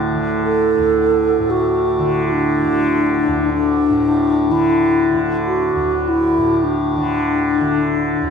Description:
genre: world meditative, free-time meditation music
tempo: free time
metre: none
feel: none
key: D major pentatonic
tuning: A4 = 440 Hz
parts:
  - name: tanpura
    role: drone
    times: 0.0-8.3 s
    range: D2 to D3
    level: -20 LUFS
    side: equal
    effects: none
  - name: bronze singing bowl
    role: texture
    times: 0.0-8.3 s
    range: A3 to E4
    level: -25 LUFS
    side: right 4 dB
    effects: none
  - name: reedy bass flute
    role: melody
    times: 0.4-8.3 s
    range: D4 to A4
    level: -16 LUFS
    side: left 1 dB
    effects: ping-pong delay
room: wet cathedral reverb, RT60 6.7 s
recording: dark, warm production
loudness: -14 LUFS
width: side -6 dB against mid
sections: 0.0-8.3 A section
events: none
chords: none

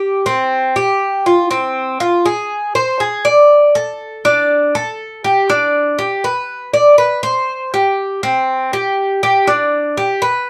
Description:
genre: latin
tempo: 120 BPM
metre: 4/4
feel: straight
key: unclear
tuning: A4 = 440 Hz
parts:
  - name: Cuban tres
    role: solo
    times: 0.0-10.5 s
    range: C4 to D5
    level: -15 LUFS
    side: equal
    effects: none
room: moderate studio reverb, RT60 0.5 s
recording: band playing live in one room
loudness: -15 LUFS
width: mono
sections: 0.0-10.5 A section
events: none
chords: none

